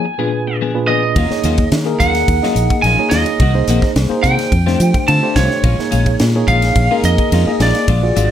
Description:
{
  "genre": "electric jazz fusion",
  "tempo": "107 BPM",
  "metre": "4/4",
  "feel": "straight",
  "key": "unclear",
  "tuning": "A4 = 440 Hz",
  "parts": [
    { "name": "lightly driven lead guitar", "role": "melody", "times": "0.0-8.3 s", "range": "Db5 to A5", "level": "-18 LUFS", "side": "right 2 dB", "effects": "none" },
    { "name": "tine electric piano", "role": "accompaniment", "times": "0.0-8.3 s", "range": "Bb2 to Eb5", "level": "-19 LUFS", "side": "equal", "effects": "medium stereo tremolo" },
    { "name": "clean electric guitar", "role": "stabs", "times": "0.0-8.3 s", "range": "Eb3 to Ab4", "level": "-24 LUFS", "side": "left 6 dB", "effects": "analog chorus, slapback echo" },
    { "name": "fingered electric bass", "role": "bass", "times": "1.2-8.3 s", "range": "Ab1 to F3", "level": "-16 LUFS", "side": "equal", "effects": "none" },
    { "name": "crisp fusion drum kit", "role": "drums", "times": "1.2-8.3 s", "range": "hi-hat, kick drum, ride cymbal, snare drum", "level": "-19 LUFS", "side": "equal", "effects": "none" }
  ],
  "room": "moderate studio ambience, RT60 0.5 s",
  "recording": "none",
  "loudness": "-12 LUFS",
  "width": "side -10 dB against mid",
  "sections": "0.0-8.3 A section",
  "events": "none",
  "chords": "0.0 Bb7b9; 1.2 Ebm9; 3.4 Cm7b5; 4.5 F7; 5.6 Bbm7",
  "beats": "0.04 0.60 | 1.16 1.72 2.28 2.84 | 3.40 3.96 4.52 5.08 | 5.64 6.20 6.76 7.32 | 7.88"
}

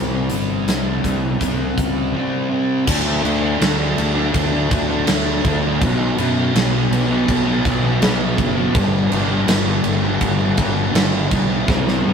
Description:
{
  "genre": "rock, shoegaze and dream pop",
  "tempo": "82 BPM",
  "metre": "4/4",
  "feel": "straight",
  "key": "G major",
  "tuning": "A4 = 443 Hz",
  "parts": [
    { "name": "fuzz guitar", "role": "riff", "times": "0.0-12.1 s", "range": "G2 to D4", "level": "-19 LUFS", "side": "left 1 dB", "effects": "distortion" },
    { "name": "fuzz fingered electric bass", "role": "bass", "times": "0.0-12.1 s", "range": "F#1 to G2", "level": "-22 LUFS", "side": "equal", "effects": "overdrive" },
    { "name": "huge arena drum kit", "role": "drums", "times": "0.3-12.0 s", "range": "crash cymbal, hi-hat, kick drum, snare drum", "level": "-20 LUFS", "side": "right 1 dB", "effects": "none" }
  ],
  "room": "moderate small room reverb, RT60 0.6 s",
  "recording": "rough rehearsal-room recording",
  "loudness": "-16 LUFS",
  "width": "side -6 dB against mid",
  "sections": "0.0-2.9 A section; 2.9-12.1 B section",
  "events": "drum fill 11.7-12.1",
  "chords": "0.0 C5; 2.9 D5; 5.8 B5; 8.7 G",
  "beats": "0.66 1.40 2.14 | 2.87 3.61 4.34 5.08 | 5.81 6.55 7.28 8.02 | 8.75 9.48 10.22 10.95 | 11.68"
}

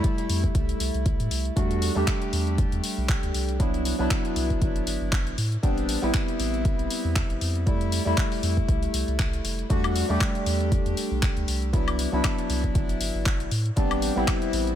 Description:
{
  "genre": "deep house",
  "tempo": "118 BPM",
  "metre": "4/4",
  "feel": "swing 56% on 16ths",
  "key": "E minor",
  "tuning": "A4 = 438 Hz",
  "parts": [
    { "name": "percussive organ stab", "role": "stabs", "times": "0.0-14.8 s", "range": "F#3 to G4", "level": "-27 LUFS", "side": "equal", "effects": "lush chorus, sidechain pumping, ping-pong delay" },
    { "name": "deep house drum kit", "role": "drums", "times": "0.0-14.8 s", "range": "handclaps, hi-hat, woodblock", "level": "-31 LUFS", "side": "left 2 dB", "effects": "overdrive" },
    { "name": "electronic kick drum", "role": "drums", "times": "0.0-14.4 s", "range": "none", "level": "-25 LUFS", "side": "equal", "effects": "overdrive" },
    { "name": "round analog bass", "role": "bass", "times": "0.3-14.8 s", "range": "F1 to A2", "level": "-28 LUFS", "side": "equal", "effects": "sidechain pumping" }
  ],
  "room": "little or no reverb",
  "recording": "none",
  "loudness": "-22 LUFS",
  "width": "side -10 dB against mid",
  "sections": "0.0-14.8 A section",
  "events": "none",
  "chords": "0.0 Fmaj9; 1.6 Em11; 3.6 Cmaj9#11; 5.4 Am11; 7.7 Fmaj9; 9.7 Em11; 11.7 Cmaj9#11; 13.5 Am11",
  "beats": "0.04 0.55 1.06 | 1.57 2.08 2.58 3.09 | 3.60 4.11 4.62 5.13 | 5.63 6.14 6.65 7.16 | 7.67 8.18 8.69 9.19 | 9.70 10.21 10.72 11.23 | 11.74 12.24 12.75 13.26 | 13.77 14.28"
}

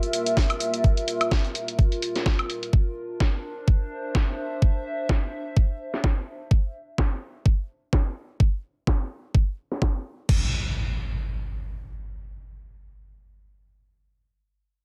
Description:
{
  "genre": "bass house",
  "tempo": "127 BPM",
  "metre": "4/4",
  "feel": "swing 56% on 16ths",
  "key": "unclear",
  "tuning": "A4 = 441 Hz",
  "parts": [
    { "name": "dark analog pad", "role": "sustained chords", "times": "0.0-2.7 s", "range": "Bb3 to E5", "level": "-32 LUFS", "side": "equal", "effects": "chorus, sidechain pumping" },
    { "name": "house drum kit", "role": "drums", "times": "0.0-10.4 s", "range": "crash cymbal, hi-hat, shaker, snare drum, woodblock", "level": "-32 LUFS", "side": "equal", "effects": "low-pass filter on perc, low-pass filter on hats, low-pass filter on snare, low-pass filter on cymbals, low-pass filter on room" },
    { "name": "warbly tape-like pad", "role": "texture", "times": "0.0-6.5 s", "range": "D4 to G5", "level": "-35 LUFS", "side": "equal", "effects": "chorus, built-in reverb, phaser, sidechain pumping" },
    { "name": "electronic kick drum", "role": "drums", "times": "0.4-10.4 s", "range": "none", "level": "-23 LUFS", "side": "equal", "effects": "none" },
    { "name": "impact", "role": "sound effects", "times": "10.3-13.7 s", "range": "none", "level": "-33 LUFS", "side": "equal", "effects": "none" }
  ],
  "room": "light reverb, digital ambience",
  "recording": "dense, heavily limited modern master",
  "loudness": "-25 LUFS",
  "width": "mono",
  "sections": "0.0-10.3 A section; 10.3-14.1 B section",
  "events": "filter sweep on drum 0.0-10.3",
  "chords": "0.0 Gm7; 2.7 Cadd9; 10.3 N.C.",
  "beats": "0.37 | 0.84 1.31 1.78 2.26 | 2.73 3.20 3.67 4.15 | 4.62 5.09 5.57 6.04 | 6.51 6.98 7.46 7.93 | 8.40 8.87 9.35 9.82 | 10.29 10.76 11.23 11.71 | 12.18 12.65 13.12 13.60"
}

